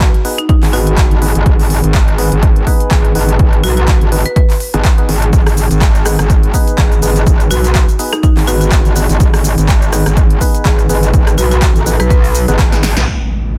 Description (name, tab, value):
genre	bass house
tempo	124 BPM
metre	4/4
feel	swing 56% on 16ths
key	G# minor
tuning	A4 = 440 Hz
part	percussive organ stab	stabs	0.0-12.8 s	B3 to B4	-24 LUFS	equal	chorus, cassette tape, sidechain pumping, dub echo
part	metallic wobble bass	bass	0.0-13.1 s	G#1 to B1	-15 LUFS	equal	distortion, chorus, overdrive, sidechain pumping
part	big-room dance drum kit	drums	0.0-13.1 s	handclaps, hi-hat, rim click, shaker, snare drum	-22 LUFS	equal	none
part	electronic kick drum	drums	0.0-12.7 s	none	-13 LUFS	equal	none
part	marimba with hard mallets	melody	0.4-12.2 s	D#4 to B4	-24 LUFS	equal	dub echo
part	impact	sound effects	13.1-13.6 s	none	-19 LUFS	equal	none
part	granular cloud pad	texture	13.5-13.6 s	G#3 to F#4	-37 LUFS	equal	none
room	digital ambience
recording	dense, heavily limited modern master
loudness	-11 LUFS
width	mono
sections	0.0-13.1 A section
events	drum fill 12.7-13.1; band accent 13.0; impact 13.1-13.6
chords	0.0 G#m; 13.1 N.C.